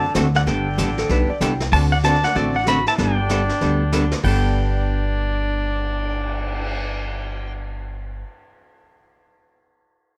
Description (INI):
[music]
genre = country, western swing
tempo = 191 BPM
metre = 4/4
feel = swing 62% on 8ths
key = G major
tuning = A4 = 438 Hz
[part]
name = pedal steel guitar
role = melody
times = 0.0-7.5 s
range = D5 to B5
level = -26 LUFS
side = equal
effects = none
[part]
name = warm viola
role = second line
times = 0.0-7.5 s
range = D3 to F#4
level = -30 LUFS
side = equal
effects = none
[part]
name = archtop guitar, miked and amplified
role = accompaniment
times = 0.0-8.3 s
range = D3 to A4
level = -26 LUFS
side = equal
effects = none
[part]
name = upright bass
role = bass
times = 0.0-8.2 s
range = G1 to F#2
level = -25 LUFS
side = equal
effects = none
[part]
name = vintage brush drum kit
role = drums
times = 0.1-6.7 s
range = brushed snare drum, crash cymbal, cymbal swell, hi-hat, kick drum, snare drum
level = -32 LUFS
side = equal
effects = none
[part]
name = clean lap steel guitar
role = second line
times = 1.0-1.7 s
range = A4 to G5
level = -27 LUFS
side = equal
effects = none
[sound]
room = light reverb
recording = none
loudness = -20 LUFS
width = mono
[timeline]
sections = 0.0-1.7 A section; 1.7-4.2 B section; 4.2-6.8 C section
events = drum fill 1.4-1.7, 3.6-4.2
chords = 0.5 Gadd9; 1.7 D7; 3.0 Gadd9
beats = 0.15 | 0.46 0.78 1.09 1.41 | 1.72 2.03 2.35 2.66 | 2.98 3.29 3.61 3.92 | 4.24 4.55 4.87 5.18 | 5.50 5.81 6.13 6.44